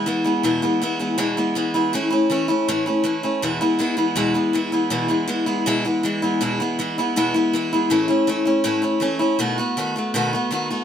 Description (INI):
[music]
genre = rock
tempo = 161 BPM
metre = 4/4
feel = straight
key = E major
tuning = A4 = 435 Hz
[part]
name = picked steel-string acoustic guitar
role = solo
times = 0.0-10.8 s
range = E2 to F#4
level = -18 LUFS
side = equal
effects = none
[sound]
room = moderate stone room reverb, RT60 1.2 s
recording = band playing live in one room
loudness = -18 LUFS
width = side -9 dB against mid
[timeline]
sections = 0.5-10.8 A section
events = none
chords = 0.5 E; 1.9 A; 3.4 E; 7.9 A; 9.4 B7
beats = 0.08 | 0.45 0.83 1.20 1.57 | 1.95 2.32 2.69 3.06 | 3.44 3.81 4.18 4.56 | 4.93 5.30 5.68 6.05 | 6.42 6.80 7.17 7.54 | 7.92 8.29 8.66 9.04 | 9.41 9.78 10.16 10.53